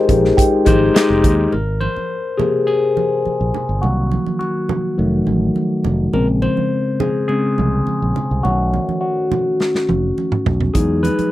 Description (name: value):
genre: lush 1970s-style soul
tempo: 104 BPM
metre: 4/4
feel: straight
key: unclear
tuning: A4 = 440 Hz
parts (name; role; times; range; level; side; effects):
- overdriven tine electric piano; accompaniment; 0.0-11.3 s; C3 to Eb5; -17 LUFS; left 2 dB; phaser
- dark French horn section; sustained chords; 0.0-1.5 s; Eb3 to F4; -30 LUFS; right 6 dB; none
- fingered electric bass; bass; 0.1-11.2 s; F1 to E2; -19 LUFS; equal; none
- modern studio drum kit; drums; 0.1-1.4, 9.6-11.3 s; hi-hat, kick drum, snare drum, toms; -17 LUFS; right 1 dB; none
- congas; percussion; 0.1-11.3 s; none; -26 LUFS; right 7 dB; none
- small celesta; texture; 0.4-1.4 s; G5; -26 LUFS; right 10 dB; none
room: light reverb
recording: dry, close 1970s-style studio recording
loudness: -15 LUFS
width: side -15 dB against mid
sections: 0.0-1.5 A section; 1.5-11.3 B section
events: tine electric piano solo 1.5-11.3; drum fill 9.6-10.7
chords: 0.0 Abmaj7; 3.8 Cm7b5; 5.0 F7b9; 6.1 Bbm7; 8.4 B9; 10.7 Emaj9